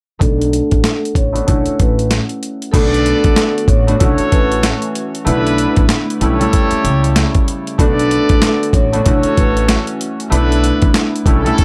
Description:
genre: hip hop, boom-bap hip-hop.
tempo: 95 BPM.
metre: 4/4.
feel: swing 61% on 16ths.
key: B minor.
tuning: A4 = 439 Hz.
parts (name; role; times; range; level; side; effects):
vibraphone with soft mallets; melody; 0.2-9.7 s; A4 to C#5; -22 LUFS; equal; high-pass filter, low-pass filter, tape echo.
concert harp; accompaniment; 0.2-11.6 s; G3 to F#4; -20 LUFS; equal; high-pass filter, low-pass filter.
upright bass; bass; 0.2-11.5 s; A1 to C#2; -20 LUFS; equal; none.
dusty soul sampler-style drum kit; drums; 0.2-11.6 s; crash cymbal, hi-hat, kick drum, snare drum; -17 LUFS; equal; overdrive.
bright trumpet section; stabs; 2.7-11.6 s; C#4 to D5; -24 LUFS; equal; high-pass filter, low-pass filter, tape echo.
hollow soft pad; sustained chords; 2.8-11.6 s; C#3 to F#4; -30 LUFS; equal; none.
finger snap; percussion; 3.4-11.1 s; none; -31 LUFS; equal; none.
room: little or no reverb.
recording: dry, gritty hardware recording.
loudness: -14 LUFS.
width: mono.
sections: 0.2-2.7 A section; 2.7-11.6 B section.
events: filter sweep 0.2-2.7.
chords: 0.2 Bm7; 1.5 F#m7; 2.7 Bm7; 4.0 F#m7; 5.3 E7sus4/B; 6.2 A7/B; 7.8 Bm7; 9.1 F#m7; 10.3 E7sus4/B.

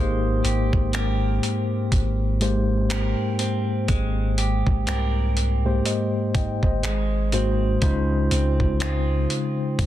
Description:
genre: contemporary R&B.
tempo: 61 BPM.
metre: 4/4.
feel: swing 58% on 16ths.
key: Ab major.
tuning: A4 = 441 Hz.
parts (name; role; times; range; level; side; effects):
mellow tine electric piano; accompaniment; 0.0-9.9 s; Ab2 to G5; -24 LUFS; left 2 dB; fast stereo tremolo.
clean electric guitar; arpeggios; 0.0-9.9 s; Db3 to Bb4; -31 LUFS; right 4 dB; ping-pong delay.
long sustained 808-style bass; bass; 0.0-9.9 s; G1 to Ab2; -24 LUFS; equal; none.
dusty soul sampler-style drum kit; drums; 0.4-9.9 s; finger snaps, hi-hat, kick drum; -25 LUFS; equal; soft clipping on snare.
room: digital ambience.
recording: dense, heavily limited modern master.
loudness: -20 LUFS.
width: side -13 dB against mid.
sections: 0.0-9.9 A section.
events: none.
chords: 0.0 Abmaj9; 6.8 Ab9; 7.8 Dbmaj7.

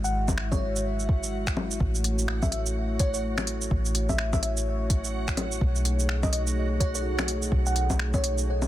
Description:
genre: future garage.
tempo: 126 BPM.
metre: 4/4.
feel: swing 60% on 16ths.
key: unclear.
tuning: A4 = 441 Hz.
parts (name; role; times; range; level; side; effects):
bell-like FM electric piano; melody; 0.0-8.5 s; C#5 to F#5; -34 LUFS; equal; chorus, digital delay.
dark analog pad; sustained chords; 0.0-8.7 s; G#3 to E5; -33 LUFS; left 1 dB; chorus, sidechain pumping.
soft 808-style bass; bass; 0.0-8.7 s; G#1 to B1; -28 LUFS; equal; none.
organic electronic drum kit; drums; 0.0-8.7 s; bongos, finger snaps, hi-hat, shaker; -31 LUFS; left 1 dB; soft clipping on snare.
backwards swelling texture; texture; 0.0-8.7 s; F#4; -40 LUFS; right 3 dB; built-in reverb.
electronic kick drum; drums; 0.3-8.2 s; none; -26 LUFS; equal; none.
room: little or no reverb.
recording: dense, heavily limited modern master.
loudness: -24 LUFS.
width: side -13 dB against mid.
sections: 0.0-8.7 A section.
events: none.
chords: 0.0 Eadd9/G#; 1.8 A6; 5.6 B13.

